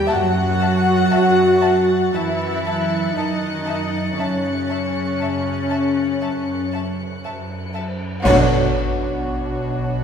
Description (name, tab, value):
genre	cinematic, suspense film score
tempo	59 BPM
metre	4/4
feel	straight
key	unclear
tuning	A4 = 440 Hz
part	warm symphonic violin section	melody	0.0-10.0 s	C#5 to F#5	-25 LUFS	left 3 dB	none
part	rich studio viola section	accompaniment	0.0-10.0 s	C#4 to F#4	-21 LUFS	left 1 dB	none
part	warm symphonic cello section	bass	0.0-10.0 s	B2 to F#3	-25 LUFS	right 3 dB	none
part	warm studio violin section	second line	0.1-10.0 s	F#4 to A5	-28 LUFS	left 3 dB	none
part	warm symphonic double bass section	bass	0.1-10.0 s	B1 to F#2	-25 LUFS	right 2 dB	none
part	warm chamber violin section	texture	0.1-7.7 s	F#6 to C#7	-32 LUFS	left 2 dB	none
part	cymbal swell, clash cymbals and concert bass drum	percussion	4.2-10.0 s	none	-26 LUFS	left 1 dB	none
part	warm French horn section	sustained chords	8.2-8.7 s	B3 to C#5	-24 LUFS	left 2 dB	none
part	warm trombone section	sustained chords	8.2-8.7 s	D3 to F#3	-26 LUFS	right 4 dB	none
room	wet scoring stage reverb, RT60 1.8 s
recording	heard from further back in the room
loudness	-17 LUFS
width	side -7 dB against mid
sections	0.0-8.2 A section; 8.2-10.0 B section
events	band accent 8.2-9.3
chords	0.1 F#m7; 8.2 Bmadd9